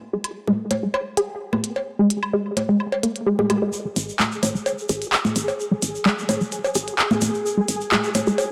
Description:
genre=minimal techno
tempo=129 BPM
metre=4/4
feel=straight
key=unclear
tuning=A4 = 439 Hz
part: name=resonant blip pluck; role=riff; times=0.1-8.3 s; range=G#3 to G#4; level=-25 LUFS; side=equal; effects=phaser, cassette tape, tape echo
part: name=minimal click drum kit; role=drums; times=0.2-8.5 s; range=handclaps, hi-hat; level=-26 LUFS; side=equal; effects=none
part: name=woodblock, congas and cowbell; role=percussion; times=0.2-8.5 s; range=none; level=-27 LUFS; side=equal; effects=analog delay
part: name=tube shaker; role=percussion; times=3.7-8.5 s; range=none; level=-34 LUFS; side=equal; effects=none
part: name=pulsing gated texture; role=texture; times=4.1-8.5 s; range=G#4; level=-31 LUFS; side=equal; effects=chorus, built-in reverb
part: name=woody FM bass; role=bass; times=4.0-8.3 s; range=G#1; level=-30 LUFS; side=equal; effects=high-pass filter
room=moderate lush hall reverb, RT60 2.3 s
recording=dry, gritty hardware recording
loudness=-22 LUFS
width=mono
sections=0.0-3.7 A section; 3.7-8.5 B section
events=filter sweep on synth arpeggio sound 0.0-3.7; build-up 3.7-8.5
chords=none

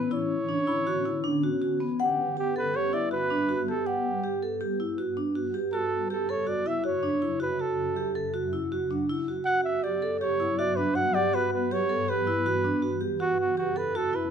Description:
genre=contemporary instrumental, chamber music in an uneven meter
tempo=160 BPM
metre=5/4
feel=straight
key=unclear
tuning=A4 = 440 Hz
part: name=mellow flugelhorn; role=melody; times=0.0-14.3 s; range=F#4 to F#5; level=-29 LUFS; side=right 2 dB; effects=none
part: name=shimmering ambient pad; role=sustained chords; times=0.0-14.3 s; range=F#2 to F#4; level=-34 LUFS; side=left 3 dB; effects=chorus, built-in reverb, phaser
part: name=vibraphone with medium mallets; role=arpeggios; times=0.0-14.3 s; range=B3 to F#5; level=-28 LUFS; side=right 2 dB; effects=none
part: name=celesta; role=texture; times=0.7-12.4 s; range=C#5 to B5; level=-34 LUFS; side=left 11 dB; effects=none
room=little or no reverb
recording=close, detailed microphones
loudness=-25 LUFS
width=side -7 dB against mid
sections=0.0-2.0 A section; 2.0-14.3 B section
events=none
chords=0.1 Bmadd9; 2.0 Gmaj7; 5.7 Dmaj7/F# (rootless); 9.5 Gmaj7; 13.2 Dmaj7/F# (rootless)

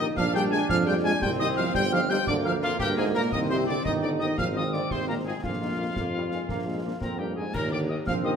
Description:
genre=military-style march for wind band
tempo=114 BPM (dotted quarters)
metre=6/8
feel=straight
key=unclear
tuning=A4 = 439 Hz
part: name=clear trumpet section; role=melody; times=0.0-8.3 s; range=F4 to Ab5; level=-32 LUFS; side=left 2 dB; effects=none
part: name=bright piccolo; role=second line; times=0.0-8.3 s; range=F5 to Ab6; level=-33 LUFS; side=left 3 dB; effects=none
part: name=dark euphonium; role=second line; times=0.0-8.4 s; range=F2 to Ab3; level=-30 LUFS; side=right 3 dB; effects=none
part: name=warm French horn section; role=accompaniment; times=0.0-8.3 s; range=Bb3 to Bb4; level=-35 LUFS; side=left 5 dB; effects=none
part: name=warm trombone section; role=sustained chords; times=0.0-8.4 s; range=G3 to Eb4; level=-32 LUFS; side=right 2 dB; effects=none
part: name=warm tuba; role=bass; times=0.0-8.4 s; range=G1 to F2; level=-31 LUFS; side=right 2 dB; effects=none
part: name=concert snare drum, concert bass drum and clash cymbals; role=drums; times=0.2-8.2 s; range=none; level=-36 LUFS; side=left 2 dB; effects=none
room=wet recital hall reverb, RT60 1.6 s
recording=none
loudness=-24 LUFS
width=side -7 dB against mid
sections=0.0-7.5 A section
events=none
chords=0.2 Bb7; 1.2 Cm; 2.3 Bb/D; 3.3 Cm; 4.4 Fm7/Ab; 5.4 Bbsus4; 6.5 Bb; 7.5 Eb

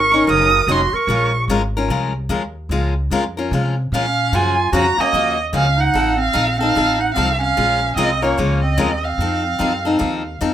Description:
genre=acoustic string swing (jazz manouche)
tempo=148 BPM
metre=4/4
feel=swing 64% on 8ths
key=Bb minor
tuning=A4 = 440 Hz
part: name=warm violin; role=melody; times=0.0-1.4, 3.9-10.4 s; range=Db5 to Eb6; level=-18 LUFS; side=right 2 dB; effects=none
part: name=clear clarinet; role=second line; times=0.0-1.3, 3.9-10.4 s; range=Bb3 to Bb4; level=-23 LUFS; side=right 3 dB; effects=none
part: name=upright bass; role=bass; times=0.0-10.5 s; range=F1 to C3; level=-22 LUFS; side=equal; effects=none
part: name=picked steel-string acoustic guitar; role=accompaniment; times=0.1-10.5 s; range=Db3 to Bb4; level=-21 LUFS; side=left 4 dB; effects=none
room=moderate small room reverb, RT60 0.5 s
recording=rough home demo mix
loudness=-15 LUFS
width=side -10 dB against mid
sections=0.0-10.5 A section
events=none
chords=0.0 Ebm9; 1.1 Bbm9; 4.3 Gbmaj7; 6.0 F7; 7.6 Bbm9; 9.2 F7b9

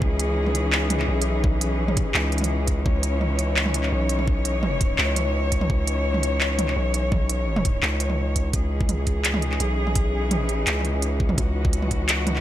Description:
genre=half-time drum and bass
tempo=169 BPM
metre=4/4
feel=half-time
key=C# minor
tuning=A4 = 440 Hz
part: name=bright studio cello section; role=sustained chords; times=0.0-12.4 s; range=E3 to C#5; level=-27 LUFS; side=left 2 dB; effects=sidechain pumping
part: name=long sustained 808-style bass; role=bass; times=0.0-12.4 s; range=B1 to C#2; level=-24 LUFS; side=equal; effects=none
part: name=electronic kick drum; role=drums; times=0.0-12.0 s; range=none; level=-24 LUFS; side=equal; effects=none
part: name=organic electronic drum kit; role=drums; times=0.2-12.4 s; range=handclaps, hi-hat, toms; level=-25 LUFS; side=right 1 dB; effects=none
room=light reverb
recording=none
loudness=-20 LUFS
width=side -12 dB against mid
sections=0.0-8.5 A section; 8.5-12.4 A section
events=drop 0.0-8.5, 8.5-12.4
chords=0.0 C#madd9

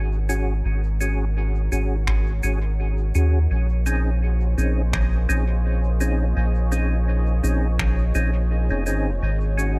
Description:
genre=ambient dub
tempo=84 BPM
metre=4/4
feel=swing 55% on 16ths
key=Bb minor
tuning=A4 = 440 Hz
part: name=warm analog pad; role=sustained chords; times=0.0-9.8 s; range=Ab3 to Eb5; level=-38 LUFS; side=equal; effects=chorus
part: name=soft dub sub bass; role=bass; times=0.0-9.8 s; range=F1 to Eb2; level=-23 LUFS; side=equal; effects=none
part: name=percussive tonewheel organ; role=stabs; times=0.3-9.8 s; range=C4 to Ab4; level=-31 LUFS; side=equal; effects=chorus vibrato, slow rotary speaker, dub echo
part: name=shaker and finger snaps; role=drums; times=0.3-9.7 s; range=none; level=-34 LUFS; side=equal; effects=dub echo
part: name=electronic kick drum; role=drums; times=2.1-8.0 s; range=none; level=-29 LUFS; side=equal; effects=none
room=small room ambience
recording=none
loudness=-22 LUFS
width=mono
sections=0.0-9.8 A section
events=fade-in on analog synth pad 0.0-9.8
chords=0.0 Ab7sus4; 3.5 Bbm11; 9.2 Ab7sus4

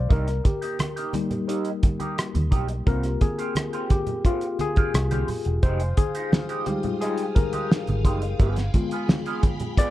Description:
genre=lush 1970s-style soul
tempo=87 BPM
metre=4/4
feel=straight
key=F minor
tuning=A4 = 440 Hz
part: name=tine electric piano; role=accompaniment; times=0.0-9.9 s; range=G3 to F5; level=-28 LUFS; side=left 4 dB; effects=medium stereo tremolo
part: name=vintage muted fingered electric bass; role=bass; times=0.0-8.7 s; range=E1 to Eb2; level=-24 LUFS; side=equal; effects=none
part: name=electric guitar through a small old amp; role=riff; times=0.1-9.9 s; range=Ab3 to Ab4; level=-32 LUFS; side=right 4 dB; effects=wah, phaser
part: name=cloth-damped thuddy drum kit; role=drums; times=0.1-9.9 s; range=hi-hat, kick drum, rim click, snare drum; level=-21 LUFS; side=equal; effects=none
part: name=congas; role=percussion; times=0.1-9.9 s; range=none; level=-32 LUFS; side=right 4 dB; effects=none
part: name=phased string machine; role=sustained chords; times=5.6-9.9 s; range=F4 to Eb6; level=-36 LUFS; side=left 2 dB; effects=ensemble chorus, phaser
room=small room ambience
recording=dark, warm production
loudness=-22 LUFS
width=side -15 dB against mid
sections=0.0-9.9 A section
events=tine electric piano solo 0.0-9.9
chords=0.1 Cm7 (rootless); 2.9 Abmaj13/C; 5.6 Fm9; 8.4 G7b9

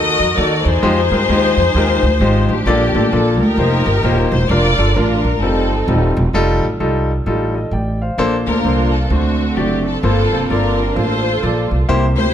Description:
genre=uptempo gospel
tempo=130 BPM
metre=4/4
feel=swing 62% on 8ths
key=unclear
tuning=A4 = 439 Hz
part: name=dark studio string section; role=melody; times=0.0-12.3 s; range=A3 to Eb5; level=-18 LUFS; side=left 1 dB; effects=none
part: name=warm concert grand piano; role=accompaniment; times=0.0-12.3 s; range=G2 to G5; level=-18 LUFS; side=left 2 dB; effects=none
part: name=upright bass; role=bass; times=0.0-12.3 s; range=Eb1 to G2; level=-17 LUFS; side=right 1 dB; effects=none
room=moderate recital hall reverb, RT60 1.5 s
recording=none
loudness=-13 LUFS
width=side -10 dB against mid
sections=0.0-6.3 A section; 6.3-8.2 B section; 8.2-12.3 C section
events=none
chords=0.0 Ebm; 0.8 Fm9; 2.7 Bbmaj7; 3.6 F9sus4; 4.5 Bb/F; 5.4 F9; 8.2 Bbmaj9; 9.1 D7; 10.0 Gm11

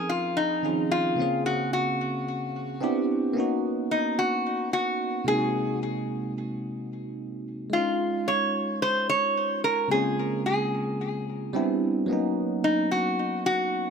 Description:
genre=amapiano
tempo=110 BPM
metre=4/4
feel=straight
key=Db major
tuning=A4 = 440 Hz
part: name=metal-body resonator slide guitar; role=melody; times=0.0-13.9 s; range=Eb4 to Db5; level=-26 LUFS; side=left 1 dB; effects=ping-pong delay
part: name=barky tine electric piano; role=accompaniment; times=0.0-13.9 s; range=C3 to F5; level=-28 LUFS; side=right 1 dB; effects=phaser
room=light reverb, studio reverb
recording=none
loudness=-24 LUFS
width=side -6 dB against mid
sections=0.0-13.9 A section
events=none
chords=0.0 Dbmaj9; 1.2 Gbmaj9#11/Db; 2.8 Cmaj9; 3.4 Cbmaj9; 5.3 Ab9/C; 7.7 Dbadd9; 9.9 Bbm9/Db; 11.5 Cmaj9; 12.1 Cbmaj9

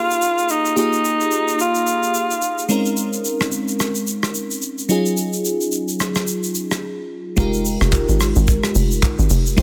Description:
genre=amapiano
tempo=109 BPM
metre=4/4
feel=swing 58% on 16ths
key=F minor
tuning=A4 = 440 Hz
part: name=growling alto saxophone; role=melody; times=0.0-2.7 s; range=Eb4 to F4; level=-22 LUFS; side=equal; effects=delay
part: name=bell-like FM electric piano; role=accompaniment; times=0.0-9.6 s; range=Gb3 to Bb4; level=-24 LUFS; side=equal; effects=chorus
part: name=soft brush drum kit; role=drums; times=0.1-9.6 s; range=handclaps, hi-hat, kick drum, rim click, shaker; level=-25 LUFS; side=equal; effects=soft clipping on snare
part: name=tight log drum bass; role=bass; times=7.4-9.6 s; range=F1 to Ab1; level=-20 LUFS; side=equal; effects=none
room=light reverb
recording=dense, heavily limited modern master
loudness=-19 LUFS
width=mono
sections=0.0-7.4 A section; 7.4-9.6 B section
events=break 6.8-7.4; drop 7.4-9.6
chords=0.0 Fm11; 2.7 Bbm11; 4.9 Ebm11; 7.4 Fm11

